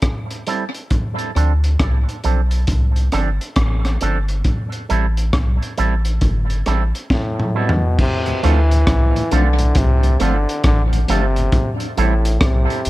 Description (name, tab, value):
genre	dub reggae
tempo	68 BPM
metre	4/4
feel	swing 64% on 16ths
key	D dorian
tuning	A4 = 441 Hz
part	crunchy breakbeat drum kit	drums	0.0-12.9 s	crash cymbal, hi-hat, kick drum, rim click, snare drum, toms	-20 LUFS	equal	none
part	electric guitar with an envelope filter	accompaniment	0.5-12.1 s	F3 to A4	-25 LUFS	right 6 dB	wide subtle chorus, low-pass filter, tape echo
part	soft dub sub bass	bass	1.4-12.9 s	G1 to D2	-16 LUFS	equal	none
part	bright trombone	melody	7.1-12.9 s	A2 to E3	-22 LUFS	left 1 dB	tape echo
part	mellow tonewheel organ	accompaniment	8.3-11.4 s	D2 to D4	-27 LUFS	left 2 dB	slow rotary speaker, tape echo
room	light reverb, studio reverb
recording	dark, warm production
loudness	-15 LUFS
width	side -17 dB against mid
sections	0.0-8.0 A section; 8.0-12.9 B section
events	filter sweep on clean electric guitar 0.0-8.0; drum fill 7.1-8.0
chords	0.0 Am7; 0.9 Dm7; 4.5 Am7; 8.0 Dm7; 11.5 Am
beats	0.03 | 0.91 1.79 2.68 3.56 | 4.45 5.33 6.22 7.10 | 7.99 8.87 9.76 10.64 | 11.52 12.41